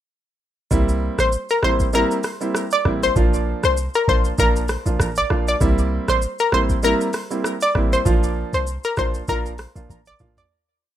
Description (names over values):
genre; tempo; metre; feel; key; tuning
afrobeats; 98 BPM; 4/4; swing 55% on 16ths; C mixolydian; A4 = 440 Hz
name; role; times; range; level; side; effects
warm concert grand piano; accompaniment; 0.7-10.4 s; F3 to F4; -24 LUFS; right 3 dB; plate reverb
clean 808-style bass; bass; 0.7-10.4 s; A1 to C2; -22 LUFS; equal; none
booming analog drum machine; drums; 0.7-10.5 s; hi-hat, kick drum, rim click, shaker, toms; -23 LUFS; equal; none
analog pluck; melody; 1.2-10.5 s; Bb4 to D5; -21 LUFS; left 2 dB; chorus, plate reverb, tape echo
room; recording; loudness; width
light reverb; rough home demo mix; -17 LUFS; side -12 dB against mid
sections
0.7-10.5 chorus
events
fade-out 8.1-10.5; drum fill 9.9-10.5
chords
0.7 C7; 3.2 Bb; 5.6 C7; 8.1 Bb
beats
| 0.71 1.32 1.94 2.55 | 3.16 3.77 4.38 5.00 | 5.61 6.22 6.83 7.45 | 8.06 8.67 9.28 9.89